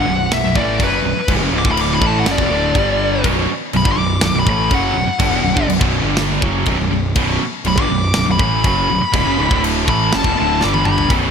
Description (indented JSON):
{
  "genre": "heavy metal",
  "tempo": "122 BPM",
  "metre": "4/4",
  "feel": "straight",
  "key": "B minor",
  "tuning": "A4 = 439 Hz",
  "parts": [
    { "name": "high-gain lead guitar", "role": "melody", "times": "0.0-11.1 s", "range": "B4 to D6", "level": "-19 LUFS", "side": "left 3 dB", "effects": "distortion, ping-pong delay" },
    { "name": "distorted electric guitar", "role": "riff", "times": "0.0-11.3 s", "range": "B1 to A3", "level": "-22 LUFS", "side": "equal", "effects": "distortion" },
    { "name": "scooped high-gain guitar", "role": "riff", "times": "0.0-11.3 s", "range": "B1 to A3", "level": "-20 LUFS", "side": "right 2 dB", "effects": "distortion" },
    { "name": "fuzz picked electric bass", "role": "bass", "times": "0.0-11.3 s", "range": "B0 to A1", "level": "-21 LUFS", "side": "equal", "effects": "overdrive" },
    { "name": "tight metal drum kit", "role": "drums", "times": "0.3-11.2 s", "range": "crash cymbal, kick drum, snare drum, toms", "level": "-20 LUFS", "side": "equal", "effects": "gated reverb" }
  ],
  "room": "moderate lush hall reverb, RT60 1.9 s",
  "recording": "bright 1980s-style digital production",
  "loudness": "-13 LUFS",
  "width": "side -7 dB against mid",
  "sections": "0.0-11.1 A section",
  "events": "lead electric guitar solo 0.0-11.1; drum fill 10.6-11.1",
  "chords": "0.0 Bm; 2.8 G5; 3.3 Bm; 10.6 G5"
}